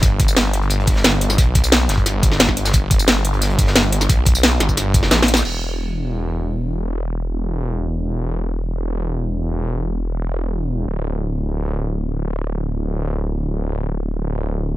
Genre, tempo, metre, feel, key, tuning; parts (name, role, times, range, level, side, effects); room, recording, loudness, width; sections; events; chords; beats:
dark technical drum and bass; 177 BPM; 4/4; straight; A4 = 438 Hz
snarling distorted saw bass; bass; 0.0-14.8 s; D1 to B1; -20 LUFS; equal; distortion, tube saturation, sidechain pumping
crunchy breakbeat drum kit; drums; 0.0-5.4 s; hi-hat, snare drum; -25 LUFS; equal; high-pass filter on hats, high-pass filter on snare, high-pass filter on room
drum and bass drum kit; drums; 0.0-5.5 s; crash cymbal, hi-hat, snare drum, tambourine; -17 LUFS; equal
electronic kick drum; drums; 0.0-5.0 s; -16 LUFS; equal
little or no reverb; -16 LUFS; side -16 dB against mid
0.0-5.5 A section; 5.5-14.8 B section
kick drops out 5.1-5.5; drum fill 5.1-5.5
| 0.03 0.37 0.70 1.04 | 1.38 1.72 2.06 2.40 | 2.74 3.08 3.42 3.76 | 4.09 4.43 4.77 5.11 | 5.45 5.79 6.13 6.47 | 6.81 7.15 7.49 7.82 | 8.16 8.50 8.84 9.18 | 9.52 9.86 10.20 10.54 | 10.87 11.21 11.55 11.89 | 12.23 12.57 12.91 13.25 | 13.59 13.93 14.26 14.60